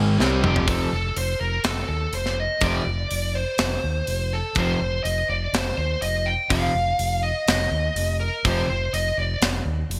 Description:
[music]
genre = hard rock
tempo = 124 BPM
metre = 4/4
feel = straight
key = F mixolydian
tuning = A4 = 440 Hz
[part]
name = overdriven semi-hollow guitar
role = riff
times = 0.0-8.7 s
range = F2 to C4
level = -28 LUFS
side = equal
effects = subtle chorus
[part]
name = overdriven semi-hollow guitar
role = riff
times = 0.0-8.7 s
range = F2 to C4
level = -32 LUFS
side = equal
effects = lush chorus
[part]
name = overdriven fingered electric bass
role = bass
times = 0.0-10.0 s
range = F1 to Eb2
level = -29 LUFS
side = equal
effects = none
[part]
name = tight metal drum kit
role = drums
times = 0.2-10.0 s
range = hi-hat, kick drum, snare drum, toms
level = -28 LUFS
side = equal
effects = gated reverb
[part]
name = smooth overdriven lead guitar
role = melody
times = 0.5-9.4 s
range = G4 to G5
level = -28 LUFS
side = equal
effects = none
[sound]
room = moderate plate reverb, RT60 2.1 s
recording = bright 1980s-style digital production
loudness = -23 LUFS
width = mono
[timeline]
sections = 0.7-10.0 A section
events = drum fill 0.2-0.7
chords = 0.2 F5

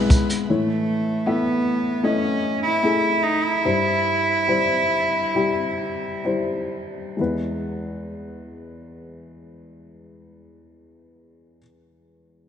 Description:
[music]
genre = pop ballad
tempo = 62-78 BPM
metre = 4/4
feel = straight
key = unclear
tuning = A4 = 439 Hz
[part]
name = dark upright piano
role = accompaniment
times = 0.0-12.5 s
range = E2 to E5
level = -24 LUFS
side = left 3 dB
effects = slapback echo
[part]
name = clear studio string section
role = sustained chords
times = 0.0-0.5 s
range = G#4 to B5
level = -41 LUFS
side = equal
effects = none
[part]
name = jazz brush drum kit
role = drums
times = 0.1-0.5 s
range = hi-hat, kick drum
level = -18 LUFS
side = equal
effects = none
[part]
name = warm cello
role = melody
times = 0.5-6.2 s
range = A3 to E4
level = -22 LUFS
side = right 2 dB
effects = slapback echo, tape echo
[sound]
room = moderate lush hall reverb, RT60 2.8 s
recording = big arena sound, nothing above 10.4 kHz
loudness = -19 LUFS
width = side -8 dB against mid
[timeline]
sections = 0.5-7.2 A section; 7.2-11.0 B section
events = slowing down 0.5-7.2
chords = 0.5 A; 3.6 C/G; 7.2 E

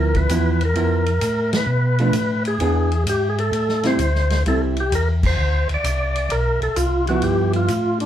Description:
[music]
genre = soul jazz organ trio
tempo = 130 BPM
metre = 4/4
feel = swing 68% on 8ths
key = G mixolydian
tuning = A4 = 440 Hz
[part]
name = percussive tonewheel organ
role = melody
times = 0.0-8.1 s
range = D4 to D5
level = -22 LUFS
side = equal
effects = slow rotary speaker
[part]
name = vintage hollow-body jazz guitar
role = accompaniment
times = 0.0-7.7 s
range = E3 to G#4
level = -22 LUFS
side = right 2 dB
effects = none
[part]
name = mellow tonewheel organ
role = bass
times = 0.0-8.1 s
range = B1 to B2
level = -20 LUFS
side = equal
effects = slow rotary speaker
[part]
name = vintage drum kit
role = drums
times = 0.1-8.1 s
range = crash cymbal, hi-hat, kick drum, ride cymbal, snare drum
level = -28 LUFS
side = equal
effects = none
[sound]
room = wet club reverb, RT60 0.6 s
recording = heard from further back in the room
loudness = -17 LUFS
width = side -10 dB against mid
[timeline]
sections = 0.0-8.1 A section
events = band accent 1.4, 5.2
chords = 0.0 G13 (rootless); 1.7 Bm7b5; 2.6 E7; 3.5 Am7; 5.4 N.C.; 7.2 G13

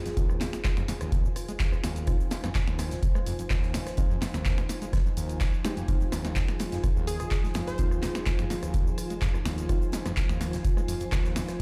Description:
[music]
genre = acid house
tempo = 126 BPM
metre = 4/4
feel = straight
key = F minor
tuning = A4 = 440 Hz
[part]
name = dark analog pad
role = sustained chords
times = 0.0-11.6 s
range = F3 to C5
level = -41 LUFS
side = equal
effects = chorus, vintage 12-bit sampler grit, sidechain pumping
[part]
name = deep mellow chord stab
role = stabs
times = 0.0-11.6 s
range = Ab3 to G4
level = -42 LUFS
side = equal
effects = chorus, digital delay
[part]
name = granular cloud pad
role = texture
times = 0.0-11.6 s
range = F4 to Ab5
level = -42 LUFS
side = equal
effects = built-in reverb, sidechain pumping
[part]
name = overdriven acid bass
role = riff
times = 0.1-11.4 s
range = Eb2 to Ab3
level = -36 LUFS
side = equal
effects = distortion, tube saturation, lush chorus, digital delay
[part]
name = modern studio drum kit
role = drums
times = 0.1-11.6 s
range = hi-hat, snare drum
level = -52 LUFS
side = equal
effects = none
[part]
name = punchy analog drum machine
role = drums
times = 0.1-11.6 s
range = finger snaps, handclaps, hi-hat, rim click, shaker, snare drum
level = -38 LUFS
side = equal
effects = none
[part]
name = electronic kick drum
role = drums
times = 0.2-11.2 s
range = none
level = -30 LUFS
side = equal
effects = none
[part]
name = glassy wavetable pluck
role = melody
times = 7.1-8.2 s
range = Ab4 to C5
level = -42 LUFS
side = equal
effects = chorus, digital delay
[sound]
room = little or no reverb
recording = played on a big sound system in a bare room, large studio reverb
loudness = -28 LUFS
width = mono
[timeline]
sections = 0.0-11.6 A section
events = none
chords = 0.0 Fm7

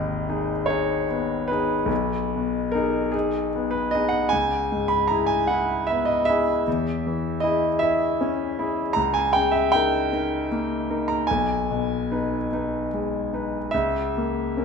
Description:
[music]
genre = classical, romantic nocturne for solo piano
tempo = 47-53 BPM (dotted quarters)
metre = 6/8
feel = rubato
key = G# minor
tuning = A4 = 436 Hz
[part]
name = clear grand piano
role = solo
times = 0.0-14.6 s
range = G#1 to B5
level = -21 LUFS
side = equal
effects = none
[sound]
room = moderate recital hall reverb, RT60 1.6 s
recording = minimal, uncompressed stereo recording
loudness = -21 LUFS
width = side -5 dB against mid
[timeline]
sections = 0.0-14.6 A section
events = none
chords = 0.0 G#m; 1.9 G#m/B; 4.3 C#m7; 6.7 C#m/E; 9.0 D#7/C#; 11.3 G#m/B; 13.7 A#dim/C#

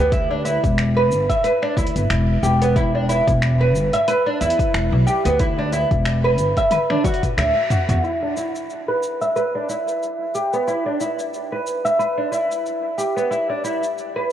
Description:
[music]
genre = organic downtempo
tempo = 91 BPM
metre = 4/4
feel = swing 56% on 16ths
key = E minor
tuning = A4 = 441 Hz
[part]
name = oud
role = arpeggios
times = 0.0-14.3 s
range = B3 to E5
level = -19 LUFS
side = right 1 dB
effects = low-pass filter, tape echo
[part]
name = upright bass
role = bass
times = 0.0-8.0 s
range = E1 to E2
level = -20 LUFS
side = equal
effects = tube saturation, sidechain pumping
[part]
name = deep house drum kit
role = drums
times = 0.1-14.1 s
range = cabasa, finger snaps, hi-hat, toms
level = -27 LUFS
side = equal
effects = none
[part]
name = electronic kick drum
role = drums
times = 0.1-7.3 s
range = none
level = -22 LUFS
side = equal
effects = none
[sound]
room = light reverb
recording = worn, warbling old tape, cassette tape, warbly pitch drift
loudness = -17 LUFS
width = side -10 dB against mid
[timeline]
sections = 0.0-8.0 A section; 8.0-14.3 B section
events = drum fill 6.7-8.0; kick drops out 7.4-8.0; band accent 7.4-7.7; filter sweep on oud 8.0-14.3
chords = 0.0 E7(no3); 8.0 Bsus4; 13.3 E7(no3)

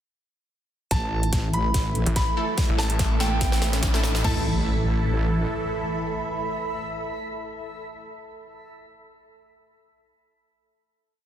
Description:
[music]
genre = heavy wobble dubstep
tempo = 144 BPM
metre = 4/4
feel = swing 54% on 16ths, half-time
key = unclear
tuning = A4 = 440 Hz
[part]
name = bright concert grand piano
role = melody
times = 0.9-7.7 s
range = G5 to B5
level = -32 LUFS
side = right 1 dB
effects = dub echo
[part]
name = supersaw pad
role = sustained chords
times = 0.9-7.7 s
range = A2 to A4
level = -32 LUFS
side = right 2 dB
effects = phaser, sidechain pumping
[part]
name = wobble bass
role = bass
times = 0.9-5.5 s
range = A1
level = -24 LUFS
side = equal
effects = chorus, overdrive
[part]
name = dubstep drum kit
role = drums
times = 0.9-4.3 s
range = crash cymbal, hi-hat, snare drum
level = -30 LUFS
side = equal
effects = high-pass filter on snare, high-pass filter on hats, high-pass filter on cymbals
[part]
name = electronic kick drum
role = drums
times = 0.9-4.3 s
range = none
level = -26 LUFS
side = equal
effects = overdrive
[part]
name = riser and impact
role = sound effects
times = 2.3-7.7 s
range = none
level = -34 LUFS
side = equal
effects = none
[part]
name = granular cloud pad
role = texture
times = 2.5-7.8 s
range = A4 to B5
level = -32 LUFS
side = right 1 dB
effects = built-in reverb, sidechain pumping
[part]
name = snarling distorted saw bass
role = bass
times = 2.1-4.2 s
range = A1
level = -24 LUFS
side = equal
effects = distortion, overdrive
[part]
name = orchestra-hit-like synth stab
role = stabs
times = 2.4-7.7 s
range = A3 to A4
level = -33 LUFS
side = left 1 dB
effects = built-in reverb, dub echo
[sound]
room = light reverb, digital ambience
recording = dense, heavily limited modern master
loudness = -22 LUFS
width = side -10 dB against mid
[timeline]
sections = 0.9-4.2 build; 4.2-7.6 final chord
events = build-up 0.9-4.2; drum fill 0.9-4.2; riser 2.3-4.2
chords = 0.9 A5

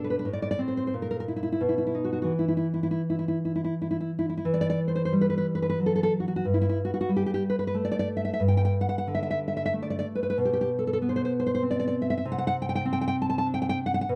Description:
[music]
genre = romantic piece for solo classical guitar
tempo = 82-99 BPM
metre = 3/4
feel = rubato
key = E minor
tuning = A4 = 440 Hz
[part]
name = nylon-string guitar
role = solo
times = 0.0-14.2 s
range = G2 to A5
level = -27 LUFS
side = equal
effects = none
[sound]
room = light reverb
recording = dark, warm production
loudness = -27 LUFS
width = mono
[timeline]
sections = 0.0-4.5 A section; 4.5-14.2 A section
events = none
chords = 0.3 Am; 0.9 N.C.; 1.6 B; 2.3 N.C.; 4.5 Em; 6.5 Gsus2; 10.4 Amadd9/B (rootless); 12.2 Csus2

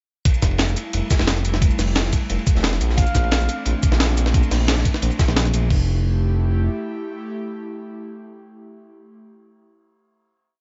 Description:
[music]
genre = liquid drum and bass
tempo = 176 BPM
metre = 4/4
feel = straight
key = F major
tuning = A4 = 440 Hz
[part]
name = airy breathy pad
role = sustained chords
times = 0.7-9.2 s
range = E3 to G4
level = -32 LUFS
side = equal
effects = chorus, vintage 12-bit sampler grit, sidechain pumping
[part]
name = breakbeat sampler-style drum kit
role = drums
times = 0.3-5.8 s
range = crash cymbal, hi-hat, shaker, snare drum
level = -26 LUFS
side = equal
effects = none
[part]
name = crunchy breakbeat drum kit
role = drums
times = 0.3-5.6 s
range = hi-hat, ride cymbal, snare drum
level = -33 LUFS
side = equal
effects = high-pass filter on cymbals, high-pass filter on hats, high-pass filter on snare, high-pass filter on room
[part]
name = electronic kick drum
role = drums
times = 0.3-5.8 s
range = none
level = -20 LUFS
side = equal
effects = none
[part]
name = smooth synth bass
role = bass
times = 0.4-6.7 s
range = F1 to Bb1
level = -22 LUFS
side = equal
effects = none
[part]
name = mellow flugelhorn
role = melody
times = 3.0-3.6 s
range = F5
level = -33 LUFS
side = equal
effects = dub echo
[sound]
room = little or no reverb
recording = nothing above 7.7 kHz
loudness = -20 LUFS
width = mono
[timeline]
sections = 0.3-5.7 drop; 5.7-8.4 final chord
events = drop 0.3-5.7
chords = 0.3 Fmaj7; 2.8 Bbmaj9#11; 5.7 Fmaj7

